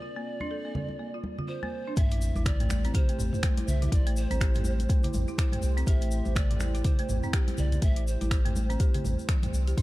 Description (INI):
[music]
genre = afro house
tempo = 123 BPM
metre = 4/4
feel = swing 59% on 16ths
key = A phrygian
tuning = A4 = 440 Hz
[part]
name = breathy pan flute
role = melody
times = 0.0-9.5 s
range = C5 to E5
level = -40 LUFS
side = right 1 dB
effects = tape echo
[part]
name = dark analog pad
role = sustained chords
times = 0.0-9.8 s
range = A3 to D5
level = -40 LUFS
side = right 1 dB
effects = chorus, phaser, sidechain pumping
[part]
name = folk marimba with medium hard mallets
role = arpeggios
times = 0.0-9.8 s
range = E3 to A4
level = -37 LUFS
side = right 1 dB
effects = sidechain pumping, tape echo
[part]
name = congas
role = percussion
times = 0.4-9.5 s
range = none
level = -36 LUFS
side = right 1 dB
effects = none
[part]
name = warm sub bass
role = bass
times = 2.0-9.8 s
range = G1 to C2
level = -28 LUFS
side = equal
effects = sidechain pumping
[part]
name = deep house drum kit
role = drums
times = 2.0-9.8 s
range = finger snaps, hi-hat, toms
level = -34 LUFS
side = equal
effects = none
[part]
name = electronic kick drum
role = drums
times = 2.0-9.8 s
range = none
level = -25 LUFS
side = equal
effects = none
[part]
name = tube shaker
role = percussion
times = 2.0-9.8 s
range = none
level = -46 LUFS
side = left 4 dB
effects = none
[part]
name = sub drop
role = sound effects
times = 2.0-3.9 s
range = none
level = -36 LUFS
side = equal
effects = none
[sound]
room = studio ambience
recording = dark, warm production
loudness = -25 LUFS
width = side -18 dB against mid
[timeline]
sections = 0.0-2.0 A section; 2.0-9.8 B section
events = filter sweep on marimba 0.0-2.0; drop 2.0-9.8; impact 2.0-3.9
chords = 0.0 Bbadd9; 2.0 Am7